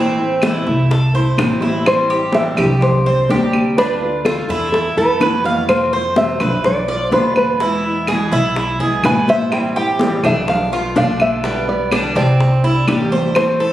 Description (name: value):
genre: latin, Cuban son and guajira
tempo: 125 BPM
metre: 4/4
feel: straight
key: A minor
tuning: A4 = 440 Hz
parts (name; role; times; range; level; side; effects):
- nylon-string guitar; melody; 0.0-13.7 s; A4 to G#5; -18 LUFS; equal; plate reverb
- fingerpicked steel-string acoustic guitar; accompaniment; 0.0-13.7 s; B2 to G4; -22 LUFS; left 1 dB; none
- Cuban tres; arpeggios; 0.0-13.7 s; B3 to F5; -20 LUFS; right 2 dB; none
- upright bass; bass; 0.0-13.7 s; A1 to F2; -21 LUFS; equal; none
- congas; percussion; 0.2-13.7 s; none; -22 LUFS; left 1 dB; none
- bongos; percussion; 0.4-13.6 s; none; -24 LUFS; left 3 dB; none
- claves; percussion; 0.4-13.6 s; none; -24 LUFS; equal; none
room: light reverb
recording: recorded on a phone in the room, studio reverb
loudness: -13 LUFS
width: side -13 dB against mid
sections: 0.0-1.9 A section; 1.9-13.7 B section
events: none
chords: 0.0 Am; 1.9 Am7; 2.8 Csus2; 3.8 Dm; 4.7 Esus4; 5.7 Fmaj7; 6.6 Bdim; 7.6 E; 9.5 Am7; 10.5 Bm7b5; 11.4 G/B; 12.4 Cadd9